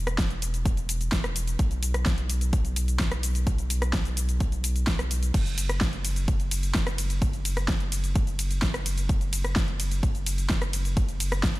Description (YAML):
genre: EDM, festival progressive house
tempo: 128 BPM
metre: 4/4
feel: straight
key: unclear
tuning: A4 = 439 Hz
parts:
  - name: saturated sub bass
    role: bass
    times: 0.0-11.6 s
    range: E1 to B1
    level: -28 LUFS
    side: equal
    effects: sidechain pumping
  - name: big-room dance drum kit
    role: drums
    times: 0.1-11.6 s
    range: crash cymbal, hi-hat, ride cymbal, rim click, shaker, snare drum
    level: -30 LUFS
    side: equal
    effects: overdrive, studio reverb
  - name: electronic kick drum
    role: drums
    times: 0.2-11.5 s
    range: none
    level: -26 LUFS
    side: equal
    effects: studio reverb
room: little or no reverb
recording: none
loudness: -24 LUFS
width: side -18 dB against mid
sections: 0.0-11.6 A section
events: none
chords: none